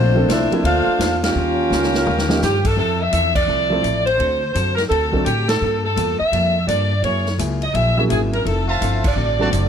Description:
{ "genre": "jazz, big band swing", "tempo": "169 BPM", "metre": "4/4", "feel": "swing 64% on 8ths", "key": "F major", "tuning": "A4 = 444 Hz", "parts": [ { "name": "bright saxophone section", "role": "melody", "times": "0.0-9.7 s", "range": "A3 to F5", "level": "-20 LUFS", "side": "equal", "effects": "none" }, { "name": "mellow trombone section", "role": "second line", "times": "0.0-2.4 s", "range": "F3 to F4", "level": "-22 LUFS", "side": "right 1 dB", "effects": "none" }, { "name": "vintage hollow-body jazz guitar", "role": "accompaniment", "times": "0.0-9.7 s", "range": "D3 to C5", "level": "-28 LUFS", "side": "left 5 dB", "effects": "none" }, { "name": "upright bass", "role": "bass", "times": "0.0-9.7 s", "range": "F1 to A2", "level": "-21 LUFS", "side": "equal", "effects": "none" }, { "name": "warm baby grand piano", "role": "accompaniment", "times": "0.2-5.2, 8.0-9.7 s", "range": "F3 to A4", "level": "-23 LUFS", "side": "right 2 dB", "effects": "none" }, { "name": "swinging big-band drum kit", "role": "drums", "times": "0.3-9.6 s", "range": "crash cymbal, hi-hat, kick drum, ride cymbal, snare drum, toms", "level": "-26 LUFS", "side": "equal", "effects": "none" }, { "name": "warm trumpet section", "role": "stabs", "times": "8.7-9.5 s", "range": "F4 to A5", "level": "-23 LUFS", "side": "equal", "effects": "none" } ], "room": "light reverb", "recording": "none", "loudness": "-16 LUFS", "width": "side -8 dB against mid", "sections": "0.0-2.8 A section; 2.8-9.7 B section", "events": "band accent 1.2, 3.3, 5.4, 9.0; drum fill 1.7-2.4", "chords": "0.0 Bbmaj9; 1.4 Eb9; 2.8 Fmaj7; 4.2 D7; 5.6 Gm9; 7.0 Gb9; 8.5 Fmaj7; 9.2 D7", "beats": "0.29 0.64 1.00 | 1.35 1.71 2.06 2.42 | 2.77 3.13 3.48 3.84 | 4.19 4.55 4.90 5.26 | 5.61 5.97 6.32 6.68 | 7.04 7.39 7.75 8.10 | 8.46 8.81 9.17 9.52" }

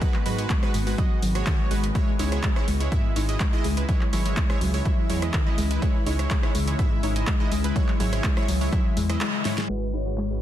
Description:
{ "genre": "progressive house", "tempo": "124 BPM", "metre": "4/4", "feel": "straight", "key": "unclear", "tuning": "A4 = 440 Hz", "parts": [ { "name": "shimmering ambient pad", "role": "sustained chords", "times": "0.0-10.4 s", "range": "C#3 to F#4", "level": "-35 LUFS", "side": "left 2 dB", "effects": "chorus, built-in reverb, phaser, sidechain pumping" }, { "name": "soft round pluck", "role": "arpeggios", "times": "0.0-10.2 s", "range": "G#2 to D#4", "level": "-30 LUFS", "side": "left 3 dB", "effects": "chorus, sidechain pumping, ping-pong delay" }, { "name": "supersaw stab", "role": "stabs", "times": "0.0-10.4 s", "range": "G#3 to E5", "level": "-31 LUFS", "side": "right 3 dB", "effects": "sidechain pumping, low-pass filter, ping-pong delay" }, { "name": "deep house drum kit", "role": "drums", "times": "0.0-10.3 s", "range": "crash cymbal, handclaps, hi-hat, rim click, snare drum", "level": "-33 LUFS", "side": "equal", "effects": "overdrive, low-pass filter on hats, small room ambience, low-pass filter on cymbals, low-pass filter on snare" }, { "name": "electronic kick drum", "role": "drums", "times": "0.0-8.8 s", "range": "none", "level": "-24 LUFS", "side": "equal", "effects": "overdrive, small room ambience" }, { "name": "dark detuned saw bass", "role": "bass", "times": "0.3-10.4 s", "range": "G#1 to G#2", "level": "-26 LUFS", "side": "equal", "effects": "sidechain pumping" }, { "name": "expressive synth lead", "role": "melody", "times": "9.7-10.4 s", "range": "B4 to C#5", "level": "-35 LUFS", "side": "left 4 dB", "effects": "wide subtle chorus" }, { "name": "downlifter", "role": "sound effects", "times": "9.9-10.4 s", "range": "none", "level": "-56 LUFS", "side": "right 1 dB", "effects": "none" } ], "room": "light reverb", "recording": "dense, heavily limited modern master, low-pass filter", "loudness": "-21 LUFS", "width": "side -12 dB against mid", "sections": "0.0-9.7 A section", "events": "filter sweep on synth pluck 0.0-9.7; kick drops out 9.2-9.7; band accent 9.2; drum fill 9.5", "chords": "0.0 G#m7; 2.0 C#m; 9.7 G#m7", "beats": "| 0.02 0.50 0.98 1.47 | 1.95 2.44 2.92 3.40 | 3.89 4.37 4.86 5.34 | 5.82 6.31 6.79 7.27 | 7.76 8.24 8.73 9.21 | 9.69 10.18" }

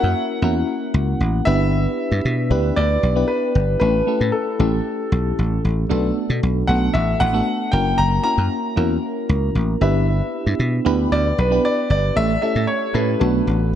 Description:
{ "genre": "1980s-style pop", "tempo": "115 BPM", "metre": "4/4", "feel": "straight", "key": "unclear", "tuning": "A4 = 440 Hz", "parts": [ { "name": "warm concert grand piano", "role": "melody", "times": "0.0-13.8 s", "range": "A4 to A#5", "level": "-23 LUFS", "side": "left 1 dB", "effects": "tape echo" }, { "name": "FM electric piano with auto-pan", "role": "accompaniment", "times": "0.0-13.8 s", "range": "A3 to B4", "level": "-22 LUFS", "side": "equal", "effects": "phaser" }, { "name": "dry thumbed slap bass", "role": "bass", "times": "0.0-13.7 s", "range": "F#1 to B2", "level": "-19 LUFS", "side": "equal", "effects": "none" } ], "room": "moderate lush hall reverb, RT60 2.5 s", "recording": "dark, warm production", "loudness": "-17 LUFS", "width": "side -10 dB against mid", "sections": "0.0-13.8 A section", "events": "none", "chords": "0.0 F#7; 1.5 Em7/G; 3.8 A7; 5.9 Bm7; 7.7 F#7; 9.8 Em7/G; 12.2 A7; 13.2 Bm7", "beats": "0.16 0.68 1.21 | 1.73 2.25 2.77 3.29 | 3.81 4.34 4.86 5.38 | 5.90 6.42 6.95 7.47 | 7.99 8.51 9.03 9.55 | 10.08 10.60 11.12 11.64 | 12.16 12.68 13.21 13.73" }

